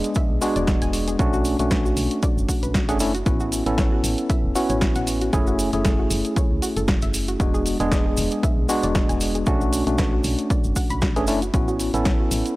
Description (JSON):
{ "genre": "deep house", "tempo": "116 BPM", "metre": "4/4", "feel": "swing 55% on 16ths", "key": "A major", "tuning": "A4 = 439 Hz", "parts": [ { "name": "tine electric piano", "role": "stabs", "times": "0.0-12.6 s", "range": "G#3 to A4", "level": "-23 LUFS", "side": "equal", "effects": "medium stereo tremolo, sidechain pumping, analog delay" }, { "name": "punchy analog drum machine", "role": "drums", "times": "0.0-12.5 s", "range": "hi-hat, snare drum", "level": "-29 LUFS", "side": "equal", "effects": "none" }, { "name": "cabasa", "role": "percussion", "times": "0.0-12.6 s", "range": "none", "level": "-33 LUFS", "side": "right 2 dB", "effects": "none" }, { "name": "soft round pluck", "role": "arpeggios", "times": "0.2-12.2 s", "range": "F#4 to B5", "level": "-33 LUFS", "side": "equal", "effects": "chorus, sidechain pumping, analog delay" }, { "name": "electronic kick drum", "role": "drums", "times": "0.2-12.2 s", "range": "none", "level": "-22 LUFS", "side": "equal", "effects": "none" }, { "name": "woody FM bass", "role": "bass", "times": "0.3-12.4 s", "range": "E1 to C#2", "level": "-27 LUFS", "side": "equal", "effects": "sidechain pumping" } ], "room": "digital ambience", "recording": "dry, gritty hardware recording, transformer saturation", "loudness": "-19 LUFS", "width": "side -19 dB against mid", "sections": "0.0-12.6 A section", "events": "none", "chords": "0.0 E7; 1.2 Bm7; 3.3 A6; 5.3 F#m9; 7.4 E7; 9.5 Bm7; 11.5 A6" }